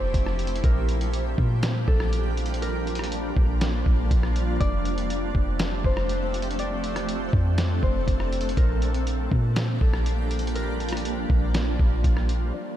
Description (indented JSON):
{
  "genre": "hip hop, atmospheric cloud-rap",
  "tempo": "121 BPM",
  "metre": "4/4",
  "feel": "half-time",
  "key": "unclear",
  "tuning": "A4 = 440 Hz",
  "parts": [
    { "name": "concert harp", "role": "melody", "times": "0.0-12.8 s", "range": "A4 to D5", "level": "-34 LUFS", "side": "left 1 dB", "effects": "low-pass filter, ping-pong delay" },
    { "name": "shimmering ambient pad", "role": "sustained chords", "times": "0.0-12.8 s", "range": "F3 to A4", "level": "-30 LUFS", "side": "right 1 dB", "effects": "chorus, built-in reverb, sidechain pumping, low-pass filter" },
    { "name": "soft 808-style bass", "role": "bass", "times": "0.0-12.5 s", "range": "F1 to Bb2", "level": "-25 LUFS", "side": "equal", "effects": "none" },
    { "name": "lo-fi sampler-style drum kit", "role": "drums", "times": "0.1-12.4 s", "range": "hi-hat, kick drum, rim click, snare drum", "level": "-27 LUFS", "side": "equal", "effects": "none" }
  ],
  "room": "light reverb, digital ambience",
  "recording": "none",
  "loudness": "-22 LUFS",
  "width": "side -12 dB against mid",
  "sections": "0.0-12.5 A section",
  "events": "none",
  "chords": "0.0 F69; 0.6 Bb6; 4.6 F69; 8.6 Bb6"
}